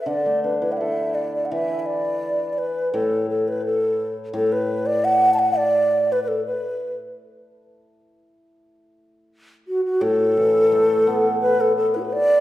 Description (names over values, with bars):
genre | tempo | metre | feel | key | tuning
chinese traditional, Chinese chamber ensemble | 85 BPM | 2/4 | rubato | unclear | A4 = 440 Hz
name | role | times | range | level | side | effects
mellow hollow xiao | melody | 0.0-7.0, 9.7-12.4 s | E4 to A5 | -19 LUFS | equal | none
hammered dulcimer | accompaniment | 0.1-6.5, 10.0-12.4 s | A2 to A4 | -26 LUFS | equal | none
room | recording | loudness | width
wet recital hall reverb, RT60 1.9 s | recorded in a church or concert hall | -18 LUFS | side -14 dB against mid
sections
0.0-1.5 A section; 1.5-12.4 B section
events
none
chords
none